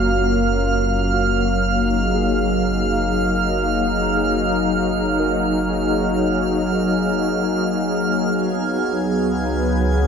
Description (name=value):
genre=ambient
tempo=59 BPM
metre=4/4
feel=straight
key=F# major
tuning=A4 = 440 Hz
part: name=warm analog pad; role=sustained chords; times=0.0-10.1 s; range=F#3 to E#5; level=-19 LUFS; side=left 1 dB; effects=chorus, tremolo
part: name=muted felt-like synth keys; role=arpeggios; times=0.0-8.3 s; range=E#4 to A#4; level=-31 LUFS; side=right 2 dB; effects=none
part: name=deep rumbling drone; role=bass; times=0.0-10.1 s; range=F#1 to C#2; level=-25 LUFS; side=equal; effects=built-in reverb
part: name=drifting glass-harmonics texture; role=texture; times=0.0-10.1 s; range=E#6 to G#6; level=-25 LUFS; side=right 5 dB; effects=chorus, built-in reverb
room=wet huge ambient reverb, RT60 7.1 s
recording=none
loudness=-17 LUFS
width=side -6 dB against mid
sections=0.0-10.1 A section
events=none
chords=0.0 F#maj7; 8.2 C#7sus4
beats=| 0.11 1.13 2.14 3.16 | 4.18 5.20 6.21 7.23 | 8.25 9.26